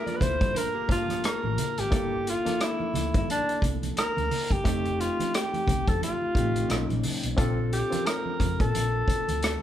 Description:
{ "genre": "lush 1970s-style soul", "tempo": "88 BPM", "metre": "4/4", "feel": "swing 58% on 16ths", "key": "unclear", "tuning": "A4 = 440 Hz", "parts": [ { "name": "breathy alto saxophone", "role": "melody", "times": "0.0-9.6 s", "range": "D4 to C5", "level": "-29 LUFS", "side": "left 1 dB", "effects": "none" }, { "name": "barky reed electric piano", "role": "accompaniment", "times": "0.0-9.6 s", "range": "F#3 to A5", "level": "-33 LUFS", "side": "left 1 dB", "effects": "overdrive, fast tremolo" }, { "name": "direct-recorded clean electric guitar", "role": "riff", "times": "0.0-1.7 s", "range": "Bb3 to D5", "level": "-38 LUFS", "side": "right 4 dB", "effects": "none" }, { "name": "vintage drum kit", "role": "drums", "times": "0.1-9.6 s", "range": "hi-hat, kick drum, rim click", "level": "-29 LUFS", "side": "equal", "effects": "none" }, { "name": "congas", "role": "percussion", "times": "0.1-9.4 s", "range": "none", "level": "-36 LUFS", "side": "right 4 dB", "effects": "none" }, { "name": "hollow-body short-scale fingered electric bass", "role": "bass", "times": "0.2-9.6 s", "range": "F1 to Bb2", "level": "-31 LUFS", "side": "equal", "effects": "none" } ], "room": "moderate large studio reverb, RT60 1.3 s", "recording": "band playing live in one room", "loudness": "-24 LUFS", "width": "side -11 dB against mid", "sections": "0.0-9.6 A section", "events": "none", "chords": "0.0 Gm7; 1.9 C13/G (rootless); 4.6 F7; 6.7 Bmaj7; 7.4 Bbmaj7" }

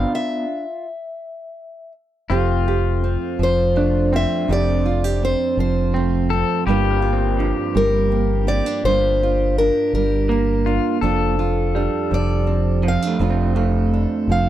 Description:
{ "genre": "acoustic folk-pop ballad", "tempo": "55 BPM (dotted quarters)", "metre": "6/8", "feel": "straight", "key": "F major", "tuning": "A4 = 441 Hz", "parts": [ { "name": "picked acoustic archtop guitar", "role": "melody", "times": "0.0-14.5 s", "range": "Bb4 to F5", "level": "-22 LUFS", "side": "left 2 dB", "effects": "none" }, { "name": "pedal steel guitar", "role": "second line", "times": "0.0-14.5 s", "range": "F4 to A4", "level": "-27 LUFS", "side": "left 11 dB", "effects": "none" }, { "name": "nylon-string guitar", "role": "accompaniment", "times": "0.0-14.5 s", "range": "F2 to G4", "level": "-22 LUFS", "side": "right 6 dB", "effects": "none" }, { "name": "electric guitar through a small old amp", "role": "arpeggios", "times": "0.0-14.5 s", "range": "F3 to A4", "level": "-25 LUFS", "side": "right 3 dB", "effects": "tremolo" }, { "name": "deep dub fingered electric bass", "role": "bass", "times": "0.0-14.5 s", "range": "F1 to G1", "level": "-21 LUFS", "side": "left 1 dB", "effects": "none" } ], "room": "light reverb", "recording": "dry, close 1970s-style studio recording", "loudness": "-17 LUFS", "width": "side -12 dB against mid", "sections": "0.0-2.3 A section; 2.3-14.5 B section", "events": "stop 0.1-2.3", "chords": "0.1 N.C.; 2.3 Fadd9; 6.7 Gm7; 11.0 Dm7/F" }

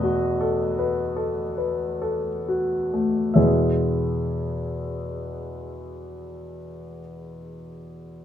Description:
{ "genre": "classical, romantic nocturne for solo piano", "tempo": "21-28 BPM (dotted quarters)", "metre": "6/8", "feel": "rubato", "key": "E major", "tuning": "A4 = 440 Hz", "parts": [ { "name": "warm grand piano", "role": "solo", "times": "0.0-8.2 s", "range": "E2 to E5", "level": "-23 LUFS", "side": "left 1 dB", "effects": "none" } ], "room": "light reverb", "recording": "minimal, uncompressed stereo recording", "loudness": "-22 LUFS", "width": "side -10 dB against mid", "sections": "0.0-3.3 A section; 3.3-8.2 B section", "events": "slowing down 0.0-3.3", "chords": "0.0 B7/E; 3.3 E" }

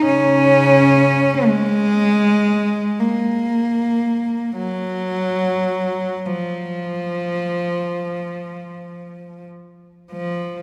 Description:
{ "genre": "classical, free, expressive piece for unaccompanied cello", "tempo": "24-42 BPM (dotted quarters)", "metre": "6/8", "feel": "rubato", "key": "unclear", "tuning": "A4 = 440 Hz", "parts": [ { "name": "warm cello", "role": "solo", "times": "0.0-10.6 s", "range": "Db3 to Db4", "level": "-19 LUFS", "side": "equal", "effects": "none" } ], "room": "wet church reverb, RT60 2.6 s", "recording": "none", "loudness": "-18 LUFS", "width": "mono", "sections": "0.0-10.1 A section", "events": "none", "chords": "none" }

